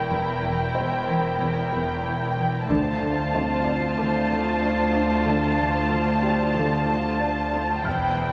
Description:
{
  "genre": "cinematic, suspense film score",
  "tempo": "93 BPM",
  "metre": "4/4",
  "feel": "straight",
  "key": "D minor",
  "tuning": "A4 = 440 Hz",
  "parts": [
    { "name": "muted studio violin section", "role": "melody", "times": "0.0-8.3 s", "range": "G5 to A5", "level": "-29 LUFS", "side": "equal", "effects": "none" },
    { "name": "muted studio violin section", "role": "second line", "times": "0.0-8.3 s", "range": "E4 to C5", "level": "-32 LUFS", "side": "equal", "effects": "none" },
    { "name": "muted studio cello section", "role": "bass", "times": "0.0-8.3 s", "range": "D2 to E2", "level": "-30 LUFS", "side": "equal", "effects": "none" },
    { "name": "muted studio double bass section", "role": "bass", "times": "0.0-8.3 s", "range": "E1 to D2", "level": "-35 LUFS", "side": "equal", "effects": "none" },
    { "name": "saturated sub bass", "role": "drone", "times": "0.0-8.3 s", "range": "E1 to D2", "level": "-37 LUFS", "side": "equal", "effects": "none" },
    { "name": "felt-muted upright piano", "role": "texture", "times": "0.0-8.3 s", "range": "C4 to F6", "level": "-36 LUFS", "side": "equal", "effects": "none" },
    { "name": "muted studio cello section", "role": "riff", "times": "0.1-8.3 s", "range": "E2 to D4", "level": "-31 LUFS", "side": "equal", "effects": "none" },
    { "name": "taiko ensemble", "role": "drums", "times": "2.7-4.0, 7.9-8.3 s", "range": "none", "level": "-42 LUFS", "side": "equal", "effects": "none" },
    { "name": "muted studio violin section", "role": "texture", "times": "2.7-8.3 s", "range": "E6 to C7", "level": "-39 LUFS", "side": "equal", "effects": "none" }
  ],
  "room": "wet concert hall reverb, RT60 2.4 s",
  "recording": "none",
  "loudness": "-24 LUFS",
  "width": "mono",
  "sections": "0.0-8.3 A section",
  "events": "none",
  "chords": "0.0 Edim; 2.7 Dm7",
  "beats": "| 0.11 0.76 1.40 2.05 | 2.69 3.34 3.98 4.63 | 5.27 5.92 6.57 7.21 | 7.86"
}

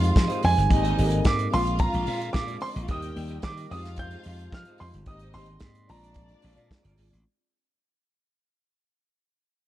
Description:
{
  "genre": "disco",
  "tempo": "110 BPM",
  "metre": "4/4",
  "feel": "straight",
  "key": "unclear",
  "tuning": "A4 = 440 Hz",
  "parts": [
    { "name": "warm grand piano", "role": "melody", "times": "0.0-6.9 s", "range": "Ab5 to G6", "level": "-29 LUFS", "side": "right 4 dB", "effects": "none" },
    { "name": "dark studio string section", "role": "second line", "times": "0.0-7.0 s", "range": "C4 to G5", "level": "-36 LUFS", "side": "left 2 dB", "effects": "none" },
    { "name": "mellow tine electric piano", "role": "accompaniment", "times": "0.0-7.3 s", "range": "G3 to Bb4", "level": "-33 LUFS", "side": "left 3 dB", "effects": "slow stereo tremolo" },
    { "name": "semi-hollow electric guitar", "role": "accompaniment", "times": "0.0-7.2 s", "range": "F4 to F5", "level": "-40 LUFS", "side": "right 7 dB", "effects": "lush chorus" },
    { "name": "warm French horn section", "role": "sustained chords", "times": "0.0-7.2 s", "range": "Bb2 to G4", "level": "-40 LUFS", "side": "left 1 dB", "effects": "none" },
    { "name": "slap bass", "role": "bass", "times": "0.0-7.2 s", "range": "G1 to F3", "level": "-27 LUFS", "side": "equal", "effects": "none" },
    { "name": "warm soul drum kit", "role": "drums", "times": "0.0-7.3 s", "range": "hi-hat, kick drum, snare drum", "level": "-25 LUFS", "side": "equal", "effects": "none" }
  ],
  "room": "studio reverb",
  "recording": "dark, warm production",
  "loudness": "-22 LUFS",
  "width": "side -14 dB against mid",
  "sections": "0.0-7.3 A section",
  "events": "fade-out 0.0-7.3",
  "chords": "0.0 Fm7; 0.7 Abmaj7; 1.5 Bb7; 2.9 Eb; 3.7 Fm7; 5.1 Abmaj7; 5.9 Bb7",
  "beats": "0.15 | 0.70 1.24 1.79 2.34 | 2.88 3.43 3.97 4.52 | 5.07 5.61 6.16 6.71"
}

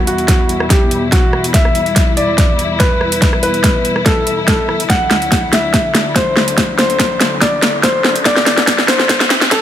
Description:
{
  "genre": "heavy wobble dubstep",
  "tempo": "143 BPM",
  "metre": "4/4",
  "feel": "swing 53% on 16ths, half-time",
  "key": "E minor",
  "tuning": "A4 = 440 Hz",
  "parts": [
    { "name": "muted studio string section", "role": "sustained chords", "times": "0.0-9.6 s", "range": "D2 to E4", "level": "-20 LUFS", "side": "left 3 dB", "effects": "sidechain pumping, low-pass filter" },
    { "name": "warm grand piano", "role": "melody", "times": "0.1-9.6 s", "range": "F#4 to F#5", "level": "-17 LUFS", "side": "equal", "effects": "low-pass filter, ping-pong delay" },
    { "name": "big-room dance drum kit", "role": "drums", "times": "0.1-9.6 s", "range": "hi-hat, rim click, snare drum", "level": "-14 LUFS", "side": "equal", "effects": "overdrive, studio reverb" },
    { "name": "electronic kick drum", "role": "drums", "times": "0.3-9.6 s", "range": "none", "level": "-15 LUFS", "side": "equal", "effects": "overdrive, studio reverb" },
    { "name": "riser", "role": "sound effects", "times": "6.7-9.6 s", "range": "none", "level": "-23 LUFS", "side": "left 2 dB", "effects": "none" }
  ],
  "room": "light reverb, small room ambience",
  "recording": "high-pass filter",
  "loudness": "-11 LUFS",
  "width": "side -10 dB against mid",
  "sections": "0.0-9.6 A section",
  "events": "build-up 0.0-9.6; drum fill 0.0-9.6; filter sweep 0.0-9.6; riser 6.7-9.6",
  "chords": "0.0 Em; 4.9 Dadd9",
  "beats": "0.28 0.70 1.12 | 1.54 1.96 2.38 2.80 | 3.22 3.64 4.06 4.48 | 4.90 5.32 5.74 6.16 | 6.58 7.00 7.42 7.83 | 8.26 8.67 9.09 9.51"
}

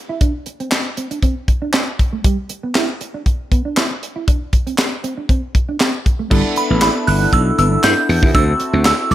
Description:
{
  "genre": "early-eighties boogie funk",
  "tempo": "118 BPM",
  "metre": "4/4",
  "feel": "straight",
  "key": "unclear",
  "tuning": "A4 = 440 Hz",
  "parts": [
    { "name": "mellow electric guitar", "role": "riff", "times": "0.1-9.1 s", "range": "G3 to E4", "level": "-24 LUFS", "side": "right 4 dB", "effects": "analog chorus" },
    { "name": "tight funk drum kit", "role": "drums", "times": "0.2-9.1 s", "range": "crash cymbal, handclaps, hi-hat, kick drum, snare drum", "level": "-16 LUFS", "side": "equal", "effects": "gated reverb" },
    { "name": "chorused polysynth", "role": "accompaniment", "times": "6.3-9.1 s", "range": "B3 to A4", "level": "-21 LUFS", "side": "left 2 dB", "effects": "none" },
    { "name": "slap bass", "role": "bass", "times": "6.3-9.1 s", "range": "G1 to G2", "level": "-16 LUFS", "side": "equal", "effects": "none" },
    { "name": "delicate synth tine bell", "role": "melody", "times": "6.6-9.1 s", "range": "B5 to G6", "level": "-17 LUFS", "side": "right 1 dB", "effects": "chorus, phaser" }
  ],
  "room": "studio reverb",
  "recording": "none",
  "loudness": "-14 LUFS",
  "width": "side -13 dB against mid",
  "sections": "0.0-6.3 A section; 6.3-9.1 B section",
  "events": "none",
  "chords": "0.2 D5; 2.2 G6; 4.3 D5; 6.3 G69; 8.3 D9",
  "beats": "| 0.21 0.72 1.23 1.74 | 2.24 2.75 3.26 3.77 | 4.28 4.79 5.29 5.80 | 6.31 6.82 7.33 7.84 | 8.35 8.85"
}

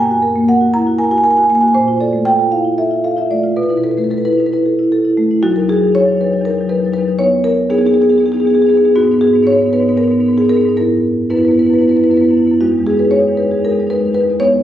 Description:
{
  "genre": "classical, contemporary piece for solo marimba",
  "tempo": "234 BPM (eighths)",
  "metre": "7/8",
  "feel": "rubato",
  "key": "E lydian",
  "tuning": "A4 = 440 Hz",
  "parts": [
    { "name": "marimba with soft mallets", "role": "solo", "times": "0.0-14.6 s", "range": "E2 to A#5", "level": "-11 LUFS", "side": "equal", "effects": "none" }
  ],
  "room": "light reverb",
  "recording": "recorded on a phone in the room, studio reverb, compression",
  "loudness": "-11 LUFS",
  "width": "side -11 dB against mid",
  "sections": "0.0-5.4 A section; 5.4-14.6 B section",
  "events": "none",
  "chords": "0.0 F#add9; 1.8 A#5; 3.6 B7sus4; 5.4 Esus2; 7.2 Emaj7#11; 9.0 G#m; 10.8 F#7sus4; 12.6 Emaj7",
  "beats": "0.24 0.49 0.75 1.00 1.26 1.51 | 1.76 2.02 2.28 2.53 2.79 3.06 3.32 | 3.58 3.85 4.12 4.39 4.65 4.92 5.18 | 5.44 5.70 5.95 6.20 6.45 6.70 6.95 | 7.20 7.45 7.70 7.95 8.20 8.45 8.70 | 8.95 9.21 9.46 9.72 9.98 10.24 10.50 | 10.76 11.03 11.30 11.56 11.83 12.09 12.35 | 12.62 12.88 13.13 13.39 13.65 13.90 14.15 | 14.41"
}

